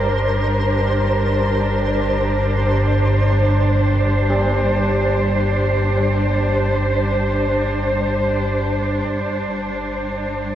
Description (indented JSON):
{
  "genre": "dark ambient drone",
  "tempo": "free time",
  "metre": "none",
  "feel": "none",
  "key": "G minor",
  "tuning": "A4 = 442 Hz",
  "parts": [
    { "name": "rich chamber cello section", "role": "sustained chords", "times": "0.0-10.6 s", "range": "G3 to C5", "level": "-20 LUFS", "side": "equal", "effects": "shimmer reverb" },
    { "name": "deep rumbling drone", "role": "drone", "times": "0.0-10.6 s", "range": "G1 to G2", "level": "-20 LUFS", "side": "equal", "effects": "built-in reverb, lush chorus" },
    { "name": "flickering grainy texture", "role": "texture", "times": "0.0-9.1 s", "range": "C5", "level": "-25 LUFS", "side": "equal", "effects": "built-in reverb, shimmer reverb" },
    { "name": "old church bells", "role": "arpeggios", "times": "4.3-10.6 s", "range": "G3", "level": "-27 LUFS", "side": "right 1 dB", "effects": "ping-pong delay, shimmer reverb" }
  ],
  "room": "wet huge ambient reverb, RT60 8.6 s",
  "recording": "worn, warbling old tape, cassette tape, warbly pitch drift, lossy compression artefacts",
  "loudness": "-16 LUFS",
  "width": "side -11 dB against mid",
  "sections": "0.0-9.1 A section; 9.1-10.6 B section",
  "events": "none",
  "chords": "0.0 Gm"
}